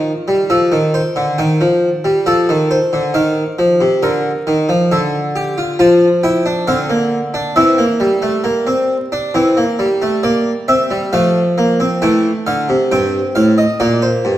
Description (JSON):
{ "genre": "classical, baroque-style 3-part fugue for harpsichord", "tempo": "68 BPM", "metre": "4/4", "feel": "straight", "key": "unclear", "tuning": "A4 = 440 Hz", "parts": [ { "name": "harpsichord", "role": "solo", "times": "0.0-14.4 s", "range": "G2 to A5", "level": "-12 LUFS", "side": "equal", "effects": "none" } ], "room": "wet recital hall reverb, RT60 1.6 s", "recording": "dark, warm production, vinyl crackle", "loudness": "-12 LUFS", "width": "side -13 dB against mid", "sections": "0.0-12.9 A section; 12.9-14.4 B section", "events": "none", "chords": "0.5 F; 2.3 F7; 4.0 Bb/D; 5.8 F; 7.6 C7/E; 11.1 F; 12.9 Gm" }